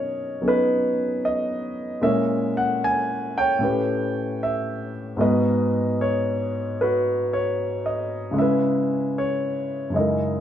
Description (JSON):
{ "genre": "jazz ballad", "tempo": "76 BPM", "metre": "4/4", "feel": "swing 68% on 8ths", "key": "G# minor", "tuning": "A4 = 439 Hz", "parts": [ { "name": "warm grand piano", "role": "solo", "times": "0.0-10.4 s", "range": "F#2 to G#5", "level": "-21 LUFS", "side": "equal", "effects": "none" } ], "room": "moderate stone room reverb, RT60 1.0 s", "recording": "band playing live in one room", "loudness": "-21 LUFS", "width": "side -10 dB against mid", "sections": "0.0-10.4 A section", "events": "none", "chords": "0.0 Bmaj9; 2.0 A#m7b5; 3.6 A9; 5.2 G#m7; 8.4 C#m7", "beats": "0.41 1.20 | 2.00 2.79 3.59 4.38 | 5.18 5.97 6.77 7.56 | 8.36 9.15 9.95" }